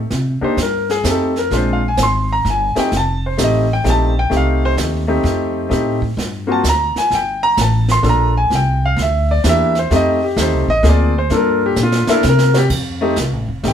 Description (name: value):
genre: jazz piano trio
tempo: 129 BPM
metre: 3/4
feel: swing 66% on 8ths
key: F mixolydian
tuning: A4 = 443 Hz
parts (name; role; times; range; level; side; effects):
- upright bass; bass; 0.0-13.7 s; F1 to C3; -17 LUFS; equal; none
- jazz brush drum kit; drums; 0.1-13.7 s; brushed snare drum, crash cymbal, hi-hat, kick drum, snare drum; -24 LUFS; right 3 dB; none
- clear concert grand piano; melody; 0.4-13.7 s; Ab3 to C6; -16 LUFS; left 1 dB; none
room: moderate studio reverb, RT60 0.7 s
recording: band playing live in one room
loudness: -13 LUFS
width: side -9 dB against mid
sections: 0.0-12.7 A section; 12.7-13.7 A section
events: grand piano solo 0.0-13.7; drum fill 11.8-12.7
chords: 0.1 C7(no3); 1.0 F9; 1.5 Bb7sus2; 2.9 F9; 5.7 Am7b5; 6.6 Bb7/D; 7.1 Gm7; 8.5 C9; 9.9 F9; 10.8 Dm7b5; 11.3 Gm7; 12.2 C5; 12.7 F9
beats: | 0.10 0.57 1.04 | 1.51 1.98 2.44 | 2.91 3.38 3.84 | 4.31 4.78 5.24 | 5.71 6.17 6.64 | 7.11 7.57 8.04 | 8.51 8.97 9.44 | 9.90 10.37 10.84 | 11.30 11.77 12.23 | 12.70 13.17 13.63